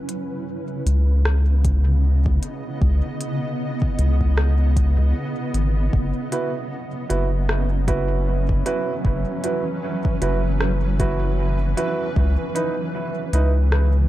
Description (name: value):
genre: ambient dub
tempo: 77 BPM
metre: 4/4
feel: swing 57% on 16ths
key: unclear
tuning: A4 = 440 Hz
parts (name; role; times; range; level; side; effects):
- granular cloud pad; sustained chords; 0.0-14.1 s; C#3 to D#5; -27 LUFS; equal; built-in reverb
- organic electronic drum kit; drums; 0.1-13.9 s; hi-hat, rim click; -29 LUFS; left 1 dB; dub echo
- round analog bass; bass; 0.9-14.1 s; F#1 to C#2; -18 LUFS; equal; none
- electronic kick drum; drums; 1.6-12.3 s; none; -23 LUFS; equal; none
- warm upright piano; stabs; 6.3-13.5 s; D#4 to B4; -26 LUFS; right 4 dB; dub echo
room: digital ambience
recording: dark, warm production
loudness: -19 LUFS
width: side -14 dB against mid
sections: 0.0-14.1 A section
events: none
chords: 0.0 C#m9; 5.9 F#7sus4; 12.2 C#m9